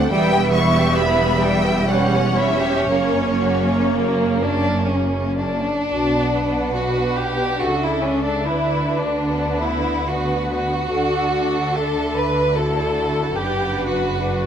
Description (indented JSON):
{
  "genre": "classical, slow romantic movement for string orchestra",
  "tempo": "56-75 BPM",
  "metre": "3/4",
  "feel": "rubato",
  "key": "B minor",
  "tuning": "A4 = 440 Hz",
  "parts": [
    { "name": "rich studio violin section", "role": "melody", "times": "0.0-14.5 s", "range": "C#5 to C#6", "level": "-28 LUFS", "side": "left 3 dB", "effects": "none" },
    { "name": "rich chamber violin section", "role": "second line", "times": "0.0-14.4 s", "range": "G3 to E5", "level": "-21 LUFS", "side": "left 1 dB", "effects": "none" },
    { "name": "rich symphonic viola section", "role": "accompaniment", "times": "0.0-14.5 s", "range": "G3 to B4", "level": "-23 LUFS", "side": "right 3 dB", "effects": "none" },
    { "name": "clear chamber double bass section", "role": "bass", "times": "0.0-14.5 s", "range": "E1 to D2", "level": "-26 LUFS", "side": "right 1 dB", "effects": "none" },
    { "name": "rich chamber cello section", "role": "bass", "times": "0.0-14.5 s", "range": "E2 to D3", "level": "-26 LUFS", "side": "right 1 dB", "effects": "none" }
  ],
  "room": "light reverb",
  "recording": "none",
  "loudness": "-17 LUFS",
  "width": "side -8 dB against mid",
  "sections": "0.0-5.9 A section; 5.9-14.5 B section",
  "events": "none",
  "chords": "0.1 Em; 1.9 C#dim/E; 2.9 F#; 5.9 Bm; 8.5 Bm/D; 10.9 D; 13.4 D/F#"
}